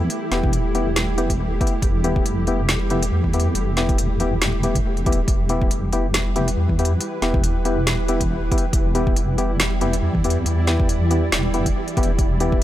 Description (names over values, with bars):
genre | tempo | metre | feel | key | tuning
deep dubstep | 139 BPM | 4/4 | swing 56% on 16ths, half-time | E phrygian | A4 = 440 Hz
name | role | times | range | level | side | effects
granular cloud pad | sustained chords | 0.0-12.6 s | E4 to D5 | -28 LUFS | right 2 dB | built-in reverb
percussive organ stab | stabs | 0.0-12.6 s | B3 to G4 | -25 LUFS | left 2 dB | chorus, dub echo
deep soft wobble bass | bass | 0.0-12.6 s | E1 to E2 | -22 LUFS | equal | chorus
wind-like tuned noise texture | texture | 0.0-12.6 s | G3 to B4 | -31 LUFS | equal | built-in reverb
deep house drum kit | drums | 0.1-12.5 s | hi-hat, snare drum | -25 LUFS | equal | none
electronic kick drum | drums | 0.4-12.6 s | none | -21 LUFS | equal | none
room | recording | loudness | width
little or no reverb | none | -18 LUFS | side -13 dB against mid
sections
0.0-12.6 A section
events
none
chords
0.0 Em